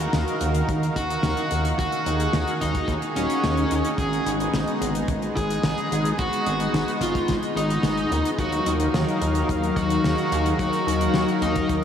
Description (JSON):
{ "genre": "synthwave", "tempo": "109 BPM", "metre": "4/4", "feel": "straight", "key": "Eb minor", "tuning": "A4 = 440 Hz", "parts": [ { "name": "lush unison pad", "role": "sustained chords", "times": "0.0-11.8 s", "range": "Eb3 to F5", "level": "-27 LUFS", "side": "left 1 dB", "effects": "chorus, sidechain pumping" }, { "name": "chorused synth bass", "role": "bass", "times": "0.0-11.8 s", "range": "Eb1 to Eb2", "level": "-26 LUFS", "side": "equal", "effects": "sidechain pumping" }, { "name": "damped 70s drum kit", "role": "drums", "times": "0.0-11.8 s", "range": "hi-hat, snare drum", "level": "-30 LUFS", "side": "left 1 dB", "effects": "studio reverb" }, { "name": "kick drum", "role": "drums", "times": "0.7-11.8 s", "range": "none", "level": "-29 LUFS", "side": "equal", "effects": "studio reverb" }, { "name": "dark smooth lead guitar", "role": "melody", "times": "1.0-11.7 s", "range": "Db4 to Ab4", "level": "-26 LUFS", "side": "right 1 dB", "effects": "overdrive, analog delay" }, { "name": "mellow synth brass", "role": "stabs", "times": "8.4-11.8 s", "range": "Gb3 to F5", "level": "-27 LUFS", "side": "left 4 dB", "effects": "chorus, diffuse ambient delay" } ], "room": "wet huge ambient reverb, RT60 7.5 s", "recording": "dreamy mix soaked in reverb", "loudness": "-21 LUFS", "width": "side -8 dB against mid", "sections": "0.0-11.8 A section", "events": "none", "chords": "0.0 Ebmadd9; 4.0 Abm; 8.4 Ebmadd9" }